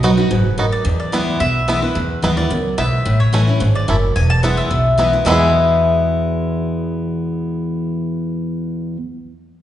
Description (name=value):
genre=bluegrass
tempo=218 BPM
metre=4/4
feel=straight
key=E major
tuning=A4 = 440 Hz
part: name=bluegrass banjo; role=melody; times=0.0-9.0 s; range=G#3 to G#4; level=-23 LUFS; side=right 2 dB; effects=none
part: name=mandolin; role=melody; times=0.0-8.9 s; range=B4 to A5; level=-20 LUFS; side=left 3 dB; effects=none
part: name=picked steel-string acoustic guitar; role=accompaniment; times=0.0-9.0 s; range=E2 to F#4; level=-18 LUFS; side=equal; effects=none
part: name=upright bass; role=bass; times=0.0-8.9 s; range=E1 to E2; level=-20 LUFS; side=equal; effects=none
room=wet recital hall reverb, RT60 1.4 s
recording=recorded in a church or concert hall, nothing above 10.6 kHz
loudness=-15 LUFS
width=side -12 dB against mid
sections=0.0-5.3 A section; 5.3-7.5 B section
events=none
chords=0.0 B; 0.9 E; 3.1 A; 4.2 E